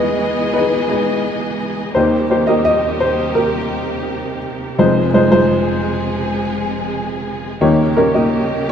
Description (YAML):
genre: acoustic folk-pop ballad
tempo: 85 BPM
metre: 4/4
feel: straight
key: unclear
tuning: A4 = 438 Hz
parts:
  - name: dark baby grand piano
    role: melody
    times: 0.0-8.7 s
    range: F1 to D#5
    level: -15 LUFS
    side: left 1 dB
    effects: none
  - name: warm studio string section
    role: sustained chords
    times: 0.0-8.7 s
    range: Eb2 to D#5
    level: -22 LUFS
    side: right 1 dB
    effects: none
room: wet scoring stage reverb, RT60 1.8 s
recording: dark, warm production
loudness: -14 LUFS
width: side -8 dB against mid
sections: 0.0-8.7 A section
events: none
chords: 0.0 Emaj7; 2.0 Cm7/Eb; 4.8 Fm7; 7.6 Eb7